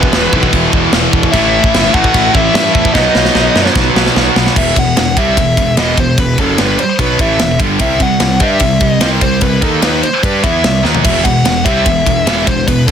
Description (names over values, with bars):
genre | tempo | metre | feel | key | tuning
heavy metal | 148 BPM | 4/4 | straight | E harmonic minor | A4 = 441 Hz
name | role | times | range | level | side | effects
dark smooth lead guitar | melody | 0.0-12.9 s | A4 to F#5 | -16 LUFS | left 2 dB | overdrive, ping-pong delay
high-gain lead guitar | second line | 0.0-3.7 s | B3 to F#4 | -20 LUFS | right 3 dB | none
heavy high-gain guitar | riff | 0.0-12.9 s | E2 to G4 | -16 LUFS | right 13 dB | distortion
high-gain distorted guitar | riff | 0.0-4.6, 11.0-12.9 s | E2 to C4 | -19 LUFS | right 1 dB | distortion
scooped high-gain guitar | riff | 0.0-12.9 s | E2 to G4 | -17 LUFS | left 11 dB | distortion
fuzz picked electric bass | bass | 0.0-12.9 s | E1 to G2 | -18 LUFS | equal | overdrive
tight metal drum kit | drums | 0.0-12.9 s | crash cymbal, kick drum, ride cymbal, snare drum, toms | -15 LUFS | equal | none
room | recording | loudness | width
little or no reverb | dense, heavily limited modern master | -9 LUFS | side -8 dB against mid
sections
0.0-4.6 A section; 4.6-12.9 B section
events
drum fill 3.0-4.6, 10.8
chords
0.0 E5; 1.3 A5; 3.0 B; 4.6 Em; 7.8 C5; 11.1 Em